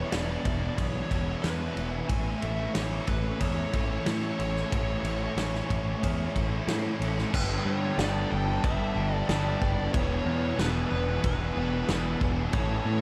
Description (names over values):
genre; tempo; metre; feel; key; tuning
rock, shoegaze and dream pop; 92 BPM; 4/4; straight; A major; A4 = 440 Hz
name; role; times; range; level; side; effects
nasal lead guitar with a parked wah; melody; 0.0-13.0 s; B4 to G#5; -38 LUFS; equal; overdrive, analog delay
ensemble organ-string; sustained chords; 0.0-13.0 s; A4 to C#6; -43 LUFS; equal; none
electric guitar through a small old amp; arpeggios; 0.0-13.0 s; E3 to A4; -43 LUFS; equal; none
biting overdriven guitar; riff; 0.0-13.0 s; E2 to A4; -38 LUFS; equal; reverse reverb
thick fuzz guitar; riff; 0.0-13.0 s; E2 to A3; -36 LUFS; equal; distortion, analog chorus
growling picked electric bass; bass; 0.0-13.0 s; E1 to A2; -34 LUFS; equal; overdrive
loose indie drum kit; drums; 0.1-12.7 s; crash cymbal, kick drum, ride cymbal, snare drum; -34 LUFS; equal; none
room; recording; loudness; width
moderate huge ambient reverb, RT60 8.4 s; dreamy mix soaked in reverb; -29 LUFS; mono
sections
0.0-7.3 A section; 7.3-13.0 B section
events
none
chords
0.0 E7; 2.1 Amaj7; 7.3 Gadd9; 9.9 E7